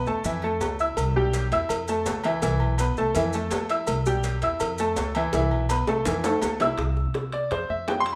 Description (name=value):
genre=latin, Cuban son and guajira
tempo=165 BPM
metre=4/4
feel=straight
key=C major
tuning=A4 = 440 Hz
part: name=bright grand piano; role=arpeggios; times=0.0-8.2 s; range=E3 to E6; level=-28 LUFS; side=equal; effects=none
part: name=upright bass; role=bass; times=0.0-8.2 s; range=B1 to F3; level=-30 LUFS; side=equal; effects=none
part: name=maracas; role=percussion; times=0.1-6.8 s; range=none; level=-42 LUFS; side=equal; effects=none
part: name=agogo bells and timbales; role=percussion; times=0.2-8.2 s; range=none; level=-35 LUFS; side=equal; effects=none
part: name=cowbell and bongos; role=percussion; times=1.0-8.2 s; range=none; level=-34 LUFS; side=equal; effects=none
room=moderate large studio reverb, RT60 1.1 s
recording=none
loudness=-25 LUFS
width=mono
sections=0.0-6.8 A section; 6.8-8.2 B section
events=drum fill 5.3-6.8; grand piano solo 6.8-8.2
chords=0.2 Fmaj7; 1.0 Cmaj7; 1.7 Fmaj7; 2.4 Cmaj7; 3.2 Fmaj7; 3.9 Cmaj7; 4.6 Fmaj7; 5.3 Cmaj7; 6.1 Fmaj7; 6.8 Csus2; 7.5 Cadd11/F